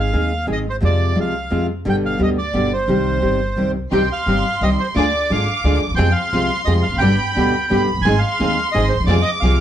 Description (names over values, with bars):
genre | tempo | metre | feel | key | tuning
tango | 174 BPM | 3/4 | rubato | C harmonic minor | A4 = 440 Hz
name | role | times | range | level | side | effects
bandoneon | melody | 0.0-9.6 s | C5 to Ab5 | -22 LUFS | right 2 dB | none
nylon-string guitar | accompaniment | 0.0-9.6 s | B2 to Ab4 | -20 LUFS | equal | none
upright bass | bass | 0.0-9.6 s | E1 to F2 | -20 LUFS | equal | none
warm chamber violin section | second line | 3.9-9.6 s | B5 to D6 | -24 LUFS | right 2 dB | none
rich chamber string section | stabs | 3.9-9.6 s | B3 to Ab4 | -28 LUFS | left 1 dB | slapback echo
room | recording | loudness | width
light reverb | dark, warm production | -16 LUFS | side -10 dB against mid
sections
0.0-3.9 A section; 3.9-9.6 A section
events
none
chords
0.0 Ab; 0.8 Fm; 1.9 G; 2.9 Cm; 5.0 Ddim; 6.0 Fm; 7.0 G; 8.1 Ab; 9.1 Fm